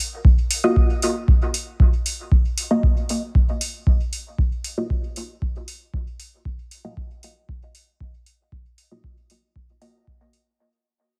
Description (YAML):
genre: dub techno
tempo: 116 BPM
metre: 4/4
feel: straight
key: Eb minor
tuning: A4 = 441 Hz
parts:
  - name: filtered dub chord stab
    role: stabs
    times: 0.0-10.0 s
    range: Bb3 to Eb5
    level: -26 LUFS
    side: equal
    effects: phaser, sidechain pumping, dub echo
  - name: electronic kick drum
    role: drums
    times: 0.2-10.2 s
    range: none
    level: -20 LUFS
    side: equal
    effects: overdrive
  - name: electronic hi-hat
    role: drums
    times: 0.5-10.4 s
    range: none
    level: -29 LUFS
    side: equal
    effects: overdrive
room: little or no reverb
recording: none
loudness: -21 LUFS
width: mono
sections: 0.0-10.6 A section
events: fade-out 0.0-10.6; filter sweep on synth stab 0.0-10.6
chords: 0.0 Ebmadd9